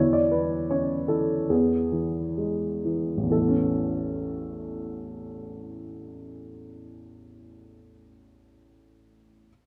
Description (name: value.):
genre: classical, lyrical solo piano.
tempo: 63-83 BPM.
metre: 4/4.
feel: rubato.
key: A major.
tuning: A4 = 440 Hz.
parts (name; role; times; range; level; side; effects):
warm upright piano; solo; 0.0-9.5 s; A1 to D5; -27 LUFS; equal; none.
room: moderate recital hall reverb, RT60 1.7 s.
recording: none.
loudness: -26 LUFS.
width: mono.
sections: 0.0-3.3 A section; 3.3-7.0 B section.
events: slowing down 0.0-3.3.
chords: 0.0 Bm11/E; 1.5 E; 3.3 Aadd9.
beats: 0.69 1.49 2.37 | 3.31 4.25 5.14 6.05.